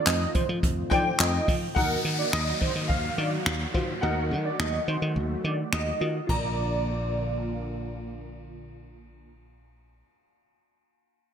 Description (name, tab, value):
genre	dance-pop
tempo	106 BPM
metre	4/4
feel	straight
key	Bb major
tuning	A4 = 440 Hz
part	wide unison lead	melody	0.0-8.0 s	Bb4 to Eb5	-32 LUFS	right 3 dB	analog chorus, low-pass filter, digital delay
part	wavetable chord stab	accompaniment	0.0-10.0 s	Eb4 to Eb5	-35 LUFS	left 1 dB	sidechain pumping, low-pass filter
part	filtered supersaw swell	sustained chords	0.0-9.3 s	Bb2 to Gb4	-36 LUFS	right 1 dB	analog chorus, sidechain pumping, low-pass filter
part	dry thumbed slap bass	bass	0.1-10.0 s	Bb1 to F3	-30 LUFS	equal	sidechain pumping
part	jazz brush drum kit	drums	0.1-6.4 s	finger snaps, handclaps, hi-hat, kick drum, ride cymbal	-29 LUFS	equal	gated reverb
part	bright grand piano	melody	0.9-10.0 s	Eb5 to Bb5	-32 LUFS	left 3 dB	ensemble chorus, low-pass filter, digital delay
part	downlifter	sound effects	1.8-6.3 s	none	-35 LUFS	left 1 dB	none
room	moderate lush hall reverb, RT60 1.9 s, small room ambience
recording	bright 1980s-style digital production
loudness	-24 LUFS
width	side -8 dB against mid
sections	0.0-1.8 A section; 1.8-6.3 B section; 6.3-8.6 C section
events	drop 0.0-1.8; filter sweep 1.8-6.3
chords	0.0 F7; 1.8 Ebmadd9; 6.3 Bb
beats	0.07 0.63 1.20 | 1.76 2.33 2.90 3.46 | 4.03 4.59 5.16 5.73 | 6.29 6.86 7.42 7.99